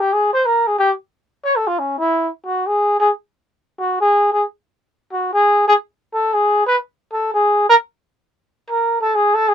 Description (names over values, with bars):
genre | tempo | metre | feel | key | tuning
jazz | 179 BPM | 4/4 | swing 65% on 8ths | unclear | A4 = 440 Hz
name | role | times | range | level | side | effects
breathy trumpet | solo | 0.0-9.5 s | Db4 to Db5 | -14 LUFS | equal | none
room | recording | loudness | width
little or no reverb | minimal, uncompressed stereo recording | -15 LUFS | side -9 dB against mid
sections
0.0-8.1 A section; 8.1-9.5 B section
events
trumpet solo 8.1-9.5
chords
none